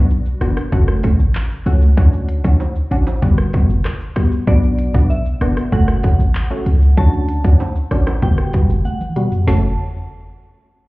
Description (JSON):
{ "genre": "dancehall", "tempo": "96 BPM", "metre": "4/4", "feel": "straight", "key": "F# phrygian", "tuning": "A4 = 440 Hz", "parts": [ { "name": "punchy chord stab", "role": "accompaniment", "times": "0.0-9.7 s", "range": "G3 to F#4", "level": "-22 LUFS", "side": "equal", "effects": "chorus, phaser, sidechain pumping, low-pass filter" }, { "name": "warm 808-style bass", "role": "bass", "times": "0.0-9.8 s", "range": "F#1 to D2", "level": "-15 LUFS", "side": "equal", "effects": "none" }, { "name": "island pop drum kit", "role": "drums", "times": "0.1-9.6 s", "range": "handclaps, hi-hat, kick drum, rim click, shaker, snare drum, toms", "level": "-16 LUFS", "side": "equal", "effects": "none" }, { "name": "tube shaker and timbales", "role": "percussion", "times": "0.1-9.8 s", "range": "none", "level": "-29 LUFS", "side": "right 2 dB", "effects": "none" }, { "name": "soft synth bell", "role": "second line", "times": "4.5-9.8 s", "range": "D5 to A5", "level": "-29 LUFS", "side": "right 1 dB", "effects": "chorus, digital delay" } ], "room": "digital ambience", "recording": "heard muffled through a wall, club reverb, EQ", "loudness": "-13 LUFS", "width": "side -21 dB against mid", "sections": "0.0-9.5 A section; 9.5-10.9 B section", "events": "filter sweep on synth stab 0.0-9.5; drum fill 8.8-9.5", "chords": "0.0 Bm; 0.7 F#m; 2.0 Dmaj7; 3.2 Gmaj7; 4.5 Bm; 5.7 F#m; 7.0 Dmaj7; 8.2 Gmaj7; 9.5 F#m", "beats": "0.10 0.72 1.35 | 1.98 2.60 3.23 3.85 | 4.47 5.10 5.72 6.35 | 6.97 7.60 8.22 8.85 | 9.47" }